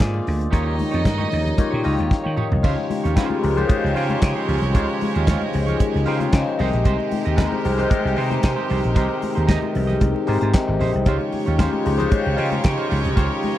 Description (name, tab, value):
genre	disco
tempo	114 BPM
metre	4/4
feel	straight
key	unclear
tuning	A4 = 439 Hz
part	clear chamber violin section	second line	0.0-13.6 s	Ab3 to F5	-29 LUFS	right 4 dB	none
part	barky tine electric piano	accompaniment	0.0-13.6 s	C3 to F5	-24 LUFS	left 6 dB	phaser
part	clean electric guitar	accompaniment	0.0-13.5 s	Eb4 to Eb5	-31 LUFS	right 8 dB	spring reverb
part	warm French horn section	sustained chords	0.0-13.6 s	Db3 to G4	-28 LUFS	right 2 dB	none
part	vintage slap bass	bass	0.0-13.3 s	Ab1 to Eb3	-22 LUFS	right 1 dB	none
part	warm soul drum kit	drums	0.0-13.6 s	crash cymbal, handclaps, hi-hat, kick drum, snare drum, toms	-18 LUFS	equal	none
part	congas	percussion	0.1-13.6 s	none	-30 LUFS	left 5 dB	none
room	little or no reverb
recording	dry, close 1970s-style studio recording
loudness	-18 LUFS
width	side -13 dB against mid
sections	0.0-2.6 A section; 2.6-13.6 B section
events	drum fill 2.1-2.6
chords	0.0 Bb7; 0.5 Eb7; 2.6 Dbmaj9#11; 6.6 Abmaj7; 11.1 Dbmaj9#11